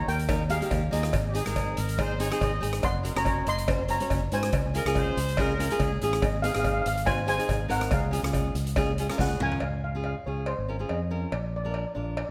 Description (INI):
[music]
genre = calypso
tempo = 142 BPM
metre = 4/4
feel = swing 53% on 16ths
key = Db major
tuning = A4 = 435 Hz
[part]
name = steel pan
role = melody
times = 0.0-12.3 s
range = Ab4 to C6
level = -34 LUFS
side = equal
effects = delay
[part]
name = nylon-string guitar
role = accompaniment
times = 0.0-12.2 s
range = Bb3 to F5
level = -34 LUFS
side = equal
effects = none
[part]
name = fingered electric bass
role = bass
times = 0.1-12.3 s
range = Gb1 to Ab2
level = -32 LUFS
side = equal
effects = none
[part]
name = street-band drum kit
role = drums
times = 0.1-9.6 s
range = hi-hat, kick drum, rim click, snare drum, toms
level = -34 LUFS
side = equal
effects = none
[part]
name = cowbell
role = percussion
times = 0.3-12.3 s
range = none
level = -38 LUFS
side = equal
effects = none
[part]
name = clear horn section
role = second line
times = 1.3-6.1 s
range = G4 to Eb5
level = -37 LUFS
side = equal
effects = none
[sound]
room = light reverb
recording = none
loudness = -27 LUFS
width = mono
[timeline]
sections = 0.0-9.6 A section; 9.6-12.3 B section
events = nylon-string guitar fill 9.0-9.6; drum fill 9.2-9.6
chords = 0.0 Eb; 1.1 Ab; 2.8 Gb; 4.5 Db; 6.2 Abadd9; 7.9 Db; 9.6 Dbmaj7; 11.3 Bb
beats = 0.29 0.72 | 1.14 1.57 1.99 2.41 | 2.84 3.26 3.68 4.11 | 4.53 4.96 5.38 5.80 | 6.23 6.65 7.07 7.50 | 7.92 8.35 8.77 9.20 | 9.62 10.04 10.47 10.90 | 11.32 11.75 12.17